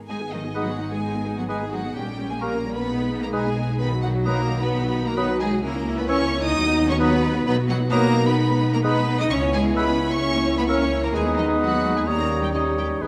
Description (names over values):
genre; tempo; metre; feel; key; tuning
cinematic, playful, whimsical film cue; 130 BPM; 4/4; straight; G# minor; A4 = 440 Hz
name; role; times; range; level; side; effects
rich chamber violin section; melody; 0.1-13.1 s; D#5 to D#6; -33 LUFS; equal; none
clear chamber violin section; second line; 0.1-13.1 s; D#4 to D#5; -32 LUFS; equal; none
rich studio viola section; accompaniment; 0.1-13.1 s; D#3 to G#4; -32 LUFS; equal; none
dark French horn section; sustained chords; 0.1-13.1 s; F#3 to G#4; -30 LUFS; equal; none
rich chamber cello section; bass; 0.1-13.1 s; D#3 to D#4; -29 LUFS; equal; none
rich studio double bass section; bass; 0.1-13.1 s; G#1 to D#2; -29 LUFS; equal; none
warm oboe; second line; 0.5-13.1 s; Bb4 to C#5; -36 LUFS; equal; none
concert flute; second line; 0.6-13.1 s; Db6 to E6; -33 LUFS; equal; none
warm clarinet; second line; 0.6-13.1 s; C#4 to G4; -35 LUFS; equal; none
dark bassoon; accompaniment; 0.6-13.1 s; E3 to Bb3; -33 LUFS; equal; none
room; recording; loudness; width
wet scoring stage reverb, RT60 1.9 s; none; -22 LUFS; mono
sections
0.1-13.1 A section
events
none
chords
0.1 G#m; 2.0 Gdim/Bb; 2.9 G#m/B; 3.8 B; 5.6 A#dim/C#; 6.5 B/D#; 7.5 B; 8.4 G#m/B; 9.3 C#m7; 10.2 A#dim/C#; 11.2 G#m/D#; 12.1 D#7